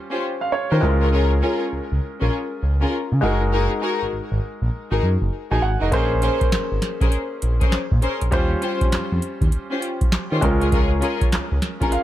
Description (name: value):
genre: R&B, new jack swing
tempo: 100 BPM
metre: 4/4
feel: swing 64% on 16ths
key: unclear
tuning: A4 = 440 Hz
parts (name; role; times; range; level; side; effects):
- clear baby grand piano; accompaniment; 0.0-12.0 s; G3 to Ab5; -26 LUFS; equal; none
- rich studio string section; stabs; 0.1-11.9 s; Db4 to C5; -25 LUFS; left 2 dB; ping-pong delay
- smooth gliding synth bass; bass; 0.7-11.9 s; F1 to Eb3; -21 LUFS; equal; none
- booming analog drum machine; drums; 5.9-12.0 s; handclaps, hi-hat, kick drum, snare drum; -20 LUFS; equal; none
room: digital ambience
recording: none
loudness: -18 LUFS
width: side -13 dB against mid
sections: 0.0-12.0 A section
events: none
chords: 0.0 Eb13; 0.8 Db6; 3.2 Gb69; 5.9 Bbm9; 8.3 Eb13; 10.4 Db6